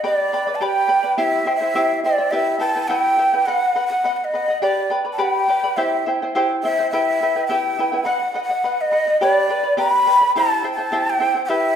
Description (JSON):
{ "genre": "andean folk, Andean ensemble", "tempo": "105 BPM", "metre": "2/4", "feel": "straight", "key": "unclear", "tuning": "A4 = 437 Hz", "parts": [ { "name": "charango", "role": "accompaniment", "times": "0.0-11.8 s", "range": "E4 to B5", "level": "-22 LUFS", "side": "equal", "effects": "none" }, { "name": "breathy large quena", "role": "melody", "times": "0.1-11.8 s", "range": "D5 to B5", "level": "-18 LUFS", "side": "equal", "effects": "none" } ], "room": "wet large studio reverb, RT60 1.3 s", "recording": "band playing live in one room", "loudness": "-16 LUFS", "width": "side -8 dB against mid", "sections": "0.0-8.1 A section; 8.1-11.8 A section", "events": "none", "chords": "0.0 G; 1.2 C; 2.3 Em; 3.5 B; 4.6 G; 5.8 C; 6.9 Em; 8.1 B; 9.2 G; 10.3 C" }